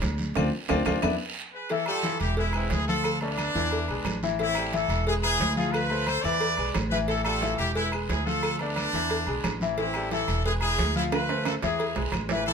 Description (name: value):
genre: latin, salsa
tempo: 178 BPM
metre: 4/4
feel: straight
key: unclear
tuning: A4 = 440 Hz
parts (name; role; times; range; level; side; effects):
- clear grand piano; accompaniment; 0.0-12.5 s; E3 to F5; -30 LUFS; left 5 dB; none
- upright bass; bass; 0.0-12.5 s; E1 to E2; -30 LUFS; right 1 dB; none
- congas; percussion; 0.0-12.5 s; none; -36 LUFS; right 1 dB; none
- cowbell; percussion; 0.0-12.3 s; none; -35 LUFS; equal; none
- guiro; percussion; 0.0-12.5 s; none; -40 LUFS; right 5 dB; none
- timbales and agogo bells; percussion; 0.0-12.5 s; none; -35 LUFS; right 7 dB; none
- claves; percussion; 0.4-12.3 s; none; -39 LUFS; left 7 dB; none
- brilliant horn section; melody; 1.5-12.5 s; B3 to D5; -28 LUFS; equal; none
room: moderate studio reverb, RT60 0.8 s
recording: minimal, uncompressed stereo recording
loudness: -24 LUFS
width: side -6 dB against mid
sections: 0.0-1.7 A section; 1.7-12.5 B section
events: grand piano solo 0.0-1.7; band accent 0.4-1.7; drum fill 1.0-1.7, 11.1-12.5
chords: 0.4 Dm7; 1.0 E7; 1.7 A5; 2.4 E7; 3.0 Dm; 3.7 E7; 4.4 Am7; 5.1 E7; 5.7 Dm7; 6.4 E7; 7.1 A5; 7.8 E7; 8.4 Dm; 9.1 E7; 9.8 Am7; 10.4 E7; 11.1 Dm7; 11.8 E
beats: 0.02 | 0.36 0.69 1.03 1.36 | 1.70 2.04 2.37 2.71 | 3.05 3.38 3.72 4.06 | 4.39 4.73 5.07 5.40 | 5.74 6.07 6.41 6.75 | 7.08 7.42 7.76 8.09 | 8.43 8.77 9.10 9.44 | 9.78 10.11 10.45 10.79 | 11.12 11.46 11.80 12.13 | 12.47